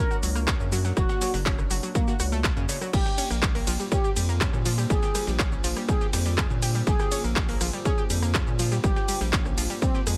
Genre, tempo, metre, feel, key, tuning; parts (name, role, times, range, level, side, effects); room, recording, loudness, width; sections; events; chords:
melodic techno; 122 BPM; 4/4; straight; A4 = 440 Hz
expressive portamento lead; melody; 0.0-10.0 s; A#3 to A#4; -35 LUFS; equal; subtle chorus, cassette tape, sidechain pumping, dub echo
dark analog pad; sustained chords; 0.2-10.2 s; Bb3 to C#5; -39 LUFS; equal; chorus, sidechain pumping
analog pluck; arpeggios; 0.0-10.2 s; C#3 to G4; -36 LUFS; equal; chorus, vintage 12-bit sampler grit, sidechain pumping, dub echo
overtone-sweeping drone; drone; 0.1-10.2 s; G2 to D4; -46 LUFS; equal
techno drum kit; drums; 0.1-10.2 s; crash cymbal, handclaps, hi-hat, ride cymbal, rim click, shaker; -33 LUFS; equal; sidechain pumping on perc, sidechain pumping on hats, sidechain pumping on cymbals
round analog bass; bass; 0.2-10.2 s; F#1 to Bb2; -30 LUFS; equal; sidechain pumping
breakbeat sampler-style drum kit; drums; 0.2-10.2 s; hi-hat, snare drum; -42 LUFS; equal
electronic kick drum; drums; 0.5-9.9 s; -28 LUFS; equal
little or no reverb; -25 LUFS; mono
0.0-10.2 A section
0.0 F#; 2.9 Bbmadd9